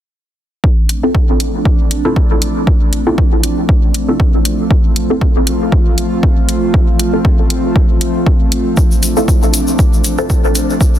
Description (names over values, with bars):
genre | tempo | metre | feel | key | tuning
dub techno | 118 BPM | 4/4 | swing 55% on 16ths | D minor | A4 = 440 Hz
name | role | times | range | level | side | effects
airy breathy pad | sustained chords | 0.6-11.0 s | F3 to F4 | -18 LUFS | equal | chorus, sidechain pumping
electronic kick drum | drums | 0.6-10.9 s | none | -12 LUFS | equal | none
electronic hi-hat | drums | 0.9-10.7 s | none | -19 LUFS | equal | none
filtered dub chord stab | stabs | 1.0-10.4 s | C4 to A4 | -19 LUFS | equal | phaser, sidechain pumping, dub echo
tube shaker | percussion | 8.8-11.0 s | none | -22 LUFS | left 3 dB | none
room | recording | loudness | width
little or no reverb | dense, heavily limited modern master | -10 LUFS | side -11 dB against mid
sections
0.6-11.0 A section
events
filter sweep on synth stab 0.6-11.0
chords
0.6 Dm7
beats
| 0.64 1.15 1.66 2.16 | 2.67 3.18 3.69 4.20 | 4.71 5.21 5.72 6.23 | 6.74 7.25 7.76 8.27 | 8.77 9.28 9.79 10.30 | 10.81